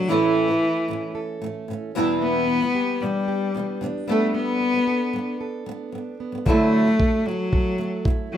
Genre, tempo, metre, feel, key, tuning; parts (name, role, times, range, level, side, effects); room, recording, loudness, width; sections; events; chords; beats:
acoustic pop; 113 BPM; 4/4; straight; D major; A4 = 440 Hz
clear cello; melody; 0.0-8.4 s; E3 to B3; -22 LUFS; left 2 dB
flamenco guitar; accompaniment; 0.0-8.3 s; E2 to A4; -25 LUFS; right 2 dB; double-tracked left and right
fingerpicked plugged-in steel-string acoustic guitar; arpeggios; 0.0-8.4 s; E3 to A4; -31 LUFS; right 5 dB; plate reverb
electronic kick drum; drums; 6.5-8.2 s; -21 LUFS; equal
wet studio reverb, RT60 0.5 s; rough home demo mix; -20 LUFS; side -10 dB against mid
0.0-8.4 A section
0.1 A; 1.9 Em7; 4.1 Gadd9; 6.5 Dadd9
| 0.08 0.62 1.15 1.68 | 2.21 2.74 3.28 3.81 | 4.34 4.87 5.40 5.93 | 6.46 6.99 7.52 8.05